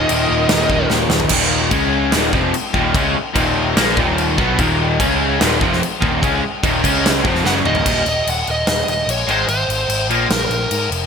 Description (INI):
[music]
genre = hard rock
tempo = 147 BPM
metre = 4/4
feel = straight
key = Eb minor, Eb dorian from 7.8 s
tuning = A4 = 439 Hz
[part]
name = smooth overdriven lead guitar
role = melody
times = 0.0-0.9, 7.5-10.9 s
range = Bb4 to Gb5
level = -21 LUFS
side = right 2 dB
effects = ping-pong delay
[part]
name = lead guitar through a small cranked amp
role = second line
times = 0.0-0.9 s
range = Bb4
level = -29 LUFS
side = right 3 dB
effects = none
[part]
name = crunchy overdriven guitar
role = riff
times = 0.0-7.8 s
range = Eb2 to Db4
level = -22 LUFS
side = equal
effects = none
[part]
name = overdriven semi-hollow guitar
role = riff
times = 0.0-10.3 s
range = Eb2 to Db4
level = -19 LUFS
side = left 1 dB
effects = analog chorus
[part]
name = picked electric bass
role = bass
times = 0.0-11.1 s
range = Eb1 to Ab2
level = -24 LUFS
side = equal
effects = none
[part]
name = huge arena drum kit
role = drums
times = 0.1-11.0 s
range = crash cymbal, kick drum, snare drum, toms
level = -19 LUFS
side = left 1 dB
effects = none
[sound]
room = moderate plate reverb, RT60 2.2 s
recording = bright 1980s-style digital production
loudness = -14 LUFS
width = side -6 dB against mid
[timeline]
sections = 0.0-1.3 A section; 1.3-7.8 B section; 7.8-11.1 C section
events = drum fill 0.9-1.3, 7.4-7.8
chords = 0.0 Eb5; 1.7 Db5; 2.1 Ebm; 5.0 Db5; 5.4 Eb5; 6.8 Db5; 7.2 Ebm; 7.8 Eb5; 9.3 Ab; 10.1 Bb5